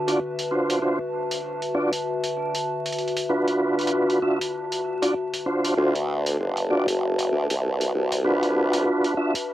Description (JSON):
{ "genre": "glitch hop", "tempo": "97 BPM", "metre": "4/4", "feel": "swing 58% on 16ths", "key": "unclear", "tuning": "A4 = 439 Hz", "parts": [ { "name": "warbly tape-like pad", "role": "texture", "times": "0.0-9.5 s", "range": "D3 to A5", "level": "-27 LUFS", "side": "left 2 dB", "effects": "chorus, built-in reverb, cassette tape" }, { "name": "tonewheel organ", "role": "stabs", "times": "0.1-9.3 s", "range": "D4 to E5", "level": "-23 LUFS", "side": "right 1 dB", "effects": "chorus vibrato, stopped rotary speaker, cassette tape, tape echo" }, { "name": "electronic hi-hat", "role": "drums", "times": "0.1-9.5 s", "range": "none", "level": "-31 LUFS", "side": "right 1 dB", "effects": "none" }, { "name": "formant-sweep wobble bass", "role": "bass", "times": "5.8-8.8 s", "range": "F#1 to D2", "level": "-24 LUFS", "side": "right 1 dB", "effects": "chorus, overdrive, high-pass filter" } ], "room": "moderate booth ambience, RT60 0.2 s", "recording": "home recording on cassette, vinyl crackle", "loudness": "-22 LUFS", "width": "side -13 dB against mid", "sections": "0.0-5.8 A section; 5.8-9.5 B section", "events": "build-up 5.8-9.5", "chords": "0.0 D7#9" }